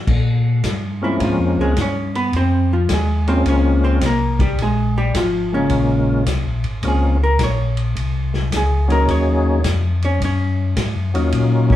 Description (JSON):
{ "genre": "soul jazz organ trio", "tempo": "107 BPM", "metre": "4/4", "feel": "swing 67% on 8ths", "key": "Bb minor", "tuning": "A4 = 443 Hz", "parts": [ { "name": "mellow tonewheel organ", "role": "bass", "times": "0.1-11.8 s", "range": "Ab1 to Bb2", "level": "-18 LUFS", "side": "left 1 dB", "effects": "chorus vibrato, slow rotary speaker" }, { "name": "vintage drum kit", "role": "drums", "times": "0.1-11.8 s", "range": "crash cymbal, hi-hat, kick drum, ride cymbal, snare drum", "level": "-24 LUFS", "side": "left 1 dB", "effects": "none" }, { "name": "percussive tonewheel organ", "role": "melody", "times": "1.0-11.8 s", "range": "Gb3 to Ab4", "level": "-20 LUFS", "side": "left 1 dB", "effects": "slow rotary speaker, overdrive, chorus vibrato" }, { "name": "archtop guitar, miked and amplified", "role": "accompaniment", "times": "1.0-11.8 s", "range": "Db3 to Db5", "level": "-20 LUFS", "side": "right 1 dB", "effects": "none" } ], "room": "wet studio reverb, RT60 0.8 s", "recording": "heard from further back in the room", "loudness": "-15 LUFS", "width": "side -12 dB against mid", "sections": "0.1-11.8 A section", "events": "hollow-body jazz guitar solo 0.1-11.8", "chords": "0.1 Bbm7; 9.1 Ebm7" }